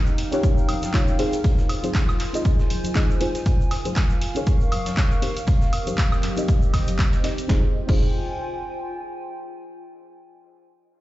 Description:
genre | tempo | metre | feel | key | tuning
deep house | 119 BPM | 4/4 | swing 57% on 16ths | F minor | A4 = 440 Hz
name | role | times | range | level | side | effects
warbly tape-like pad | texture | 0.0-9.5 s | C4 to Db6 | -31 LUFS | equal | chorus, built-in reverb, sidechain pumping
egg shaker | percussion | 0.1-7.5 s | none | -42 LUFS | right 2 dB | none
breakbeat sampler-style drum kit | drums | 0.2-7.4 s | hi-hat, snare drum | -41 LUFS | right 1 dB | none
punchy analog drum machine | drums | 0.2-8.0 s | crash cymbal, handclaps, hi-hat, snare drum, woodblock | -31 LUFS | equal | none
deep mellow chord stab | stabs | 0.3-8.1 s | C4 to Eb5 | -29 LUFS | left 1 dB | chorus, sidechain pumping, dub echo
electronic kick drum | drums | 0.4-8.0 s | none | -20 LUFS | equal | overdrive
congas | percussion | 0.7-7.0 s | none | -33 LUFS | left 2 dB | none
round analog bass | bass | 7.5-8.1 s | F1 | -28 LUFS | equal | none
room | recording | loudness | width
little or no reverb | played on a big sound system in a bare room, large studio reverb, nothing above 7.8 kHz | -19 LUFS | side -16 dB against mid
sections
0.0-7.5 A section; 7.5-9.5 B section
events
filter sweep on synth stab 0.0-7.5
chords
0.0 Eb13; 1.2 Fm7; 3.5 Bbm11; 5.2 Cm7; 7.5 Fm7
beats
0.43 0.94 | 1.44 1.95 2.45 2.96 | 3.46 3.96 4.47 4.97 | 5.48 5.98 6.48 6.99 | 7.49 8.00 8.50 9.01

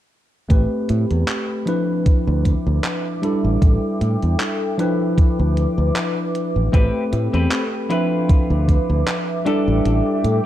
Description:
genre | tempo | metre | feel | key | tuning
vaporwave | 77 BPM | 4/4 | swing 55% on 16ths | D dorian | A4 = 442 Hz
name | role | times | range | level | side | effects
tine electric piano | accompaniment | 0.5-10.5 s | F3 to E5 | -22 LUFS | equal | lush chorus, tape echo
warbly tape-like pad | sustained chords | 1.0-10.5 s | C4 to D6 | -27 LUFS | equal | chorus, built-in reverb
modern bright fingered electric bass | bass | 0.5-10.4 s | A1 to A2 | -19 LUFS | equal | none
electronic kick drum | drums | 0.5-8.9 s | none | -15 LUFS | equal | none
gated 80s digital drum machine | drums | 0.5-10.4 s | handclaps, hi-hat | -27 LUFS | equal | gated reverb
semi-hollow electric guitar | riff | 6.7-10.2 s | C4 to B4 | -26 LUFS | left 2 dB | lush chorus, tape echo
room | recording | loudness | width
light reverb | dark, warm production | -16 LUFS | side -12 dB against mid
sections
0.5-10.5 A section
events
filter sweep on ambient pad 0.5-10.5; kick drops out 9.9-10.5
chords
0.5 Am9; 1.7 Dm69; 3.2 A7sus4; 4.8 Dm69; 6.7 Am9; 7.9 Dm69; 9.5 A7sus4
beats
| 0.50 1.28 2.06 2.84 | 3.62 4.40 5.18 5.96 | 6.74 7.52 8.30 9.08 | 9.86

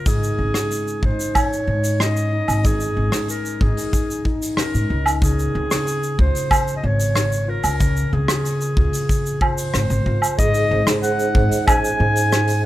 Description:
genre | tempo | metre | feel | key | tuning
folktronica | 93 BPM | 4/4 | straight | Ab major | A4 = 444 Hz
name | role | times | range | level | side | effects
warm clarinet | melody | 0.0-12.6 s | Ab4 to Ab5 | -24 LUFS | right 1 dB | none
concert harp | arpeggios | 0.0-12.7 s | Ab2 to Ab4 | -25 LUFS | left 2 dB | vintage 12-bit sampler grit, low-pass filter
kick drum | drums | 0.1-11.8 s | none | -22 LUFS | equal | none
soft brush drum kit | drums | 0.1-12.6 s | hi-hat, rim click, shaker, woodblock | -22 LUFS | right 1 dB | none
upright bass | bass | 0.4-12.7 s | Ab1 to Ab2 | -21 LUFS | equal | none
vibraphone with medium mallets | second line | 10.4-12.7 s | Ab4 to Eb5 | -23 LUFS | right 3 dB | digital delay
room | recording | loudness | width
small room ambience | rough home demo mix | -17 LUFS | side -15 dB against mid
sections
0.0-10.4 A section; 10.4-12.7 B section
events
filter sweep on harp 0.0-10.4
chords
0.1 Absus4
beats
| 0.06 0.71 1.35 2.00 | 2.64 3.29 3.93 4.58 | 5.22 5.87 6.51 7.16 | 7.80 8.45 9.09 9.74 | 10.38 11.03 11.67 12.32

